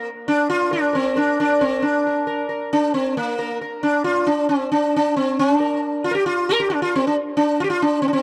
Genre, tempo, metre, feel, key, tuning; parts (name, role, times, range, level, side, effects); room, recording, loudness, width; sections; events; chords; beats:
indian classical; 135 BPM; 4/4; straight; Bb raga bhupali; A4 = 440 Hz
sitar; solo; 0.0-8.2 s; Bb3 to Bb4; -20 LUFS; equal; tape echo
little or no reverb; dry, close 1970s-style studio recording; -20 LUFS; mono
0.0-1.8 A section; 1.8-8.2 B section
| 0.01 0.47 0.92 1.36 | 1.81 2.26 2.71 3.15 | 3.60 4.05 4.49 4.93 | 5.38 5.82 6.26 6.70 | 7.14 7.58 8.02